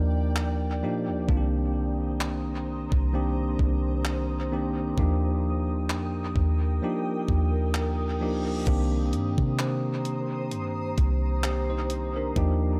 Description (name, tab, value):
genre	contemporary R&B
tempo	65 BPM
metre	4/4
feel	swing 54% on 16ths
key	C minor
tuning	A4 = 440 Hz
part	bell-like tine electric piano	accompaniment	0.0-12.8 s	Eb3 to C5	-32 LUFS	equal	dub echo
part	granular cloud pad	sustained chords	0.0-12.8 s	Bb4 to Eb6	-39 LUFS	equal	built-in reverb, sidechain pumping
part	soft 808-style bass	bass	0.0-12.8 s	C2 to C3	-29 LUFS	equal	none
part	crisp 8-bit digital drum machine	drums	0.4-12.6 s	crash cymbal, handclaps, hi-hat, kick drum	-33 LUFS	equal	dub echo
part	reverse cymbal	sound effects	7.9-8.7 s	none	-48 LUFS	equal	none
part	worn celesta	texture	9.6-12.7 s	C5	-44 LUFS	equal	none
room	digital ambience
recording	echo-heavy mix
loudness	-27 LUFS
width	mono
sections	0.0-8.7 A section; 8.7-12.8 B section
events	reverse cymbal 7.9-8.7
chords	0.0 Ebmaj7; 1.3 Cm7; 5.0 Ebmaj7; 8.7 Cm7